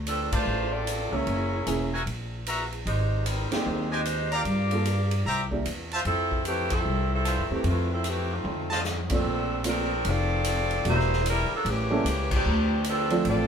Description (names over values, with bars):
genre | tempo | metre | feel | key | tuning
jazz, big band swing | 150 BPM | 4/4 | swing 64% on 8ths | F major, Bb major from 9.3 s | A4 = 440 Hz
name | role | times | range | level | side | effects
upright bass | bass | 0.0-13.5 s | Fb1 to A2 | -28 LUFS | equal | none
clear saxophone section | melody | 0.1-13.5 s | Eb3 to D5 | -28 LUFS | equal | none
swinging big-band drum kit | drums | 0.1-13.4 s | crash cymbal, hi-hat, kick drum, ride cymbal, snare drum, toms | -33 LUFS | equal | none
brilliant trumpet section | stabs | 0.3-8.8 s | F4 to Bb5 | -29 LUFS | equal | none
warm baby grand piano | accompaniment | 1.1-13.5 s | Bb2 to G5 | -29 LUFS | right 3 dB | none
room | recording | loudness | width
moderate studio ambience, RT60 0.4 s | band playing live in one room | -24 LUFS | side -7 dB against mid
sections
0.0-9.3 A section; 9.3-13.5 B section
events
band accent 0.3, 3.5, 6.7, 9.1, 12.3; drum fill 8.5-9.3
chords
0.0 Dm7; 1.3 Gb9; 2.9 Abmaj7; 4.5 Gm7; 5.3 C7; 6.1 Fmaj7; 8.5 F7; 9.3 Bbmaj9; 10.9 Em7b5; 11.7 A7b9; 12.5 Dm7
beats
0.07 0.47 0.87 | 1.26 1.66 2.06 2.46 | 2.86 3.26 3.66 4.06 | 4.46 4.86 5.26 5.66 | 6.06 6.46 6.86 7.26 | 7.66 8.06 8.46 8.86 | 9.26 9.65 10.05 10.45 | 10.85 11.25 11.65 12.05 | 12.45 12.85 13.25